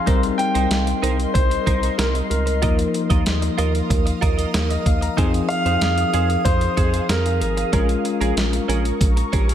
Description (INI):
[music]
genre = 1980s-style pop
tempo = 94 BPM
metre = 4/4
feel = straight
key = unclear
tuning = A4 = 440 Hz
[part]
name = bell-like tine electric piano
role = accompaniment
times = 0.0-9.5 s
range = F3 to Bb5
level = -24 LUFS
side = left 6 dB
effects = shimmer reverb
[part]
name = ethereal airy pad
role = sustained chords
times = 0.0-9.5 s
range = Ab4 to Eb6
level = -28 LUFS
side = right 3 dB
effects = ensemble chorus, built-in reverb, phaser, shimmer reverb
[part]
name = direct-recorded clean electric guitar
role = riff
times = 0.1-9.5 s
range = Db4 to Eb5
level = -29 LUFS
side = right 7 dB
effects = analog chorus, digital delay, shimmer reverb
[part]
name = rubbery square bass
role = bass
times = 0.1-9.5 s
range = Ab1 to F2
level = -22 LUFS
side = right 1 dB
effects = none
[part]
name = dusty soul sampler-style drum kit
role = drums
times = 0.1-9.5 s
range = hi-hat, kick drum, snare drum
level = -21 LUFS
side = right 1 dB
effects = gated reverb
[part]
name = clear grand piano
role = melody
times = 0.4-8.0 s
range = Bb4 to G5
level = -24 LUFS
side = right 1 dB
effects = digital delay, shimmer reverb
[sound]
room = light reverb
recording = none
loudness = -17 LUFS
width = side -10 dB against mid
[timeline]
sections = 0.1-9.5 A section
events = none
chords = 0.1 Cm7; 2.6 Ebsus2; 5.2 Fm7; 7.7 Bbm7